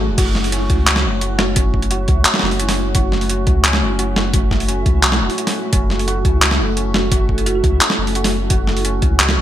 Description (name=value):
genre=half-time drum and bass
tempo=173 BPM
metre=4/4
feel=half-time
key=F# minor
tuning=A4 = 440 Hz
part: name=dark analog pad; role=sustained chords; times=0.0-9.4 s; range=A3 to C#5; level=-25 LUFS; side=equal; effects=chorus, vintage 12-bit sampler grit, sidechain pumping
part: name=santur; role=arpeggios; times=0.0-9.4 s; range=C#4 to A4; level=-25 LUFS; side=equal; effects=ping-pong delay
part: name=saturated sub bass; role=bass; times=0.0-9.4 s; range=E1 to C#2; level=-19 LUFS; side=equal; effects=none
part: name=flickering grainy texture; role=texture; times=0.0-9.4 s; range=E4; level=-30 LUFS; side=right 3 dB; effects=built-in reverb, analog chorus
part: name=boom bap sampler-style drum kit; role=drums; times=0.2-9.4 s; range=crash cymbal, handclaps, hi-hat, snare drum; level=-18 LUFS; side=equal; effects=overdrive, gated reverb
part: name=electronic kick drum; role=drums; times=0.2-9.1 s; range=none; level=-17 LUFS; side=equal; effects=overdrive
part: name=folk marimba with medium mallets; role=melody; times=1.4-1.7, 6.9-7.6 s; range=F#4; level=-27 LUFS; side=right 2 dB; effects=ping-pong delay
room=light reverb, digital ambience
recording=bright 1980s-style digital production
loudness=-14 LUFS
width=side -11 dB against mid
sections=0.0-9.4 A section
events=none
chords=0.0 F#m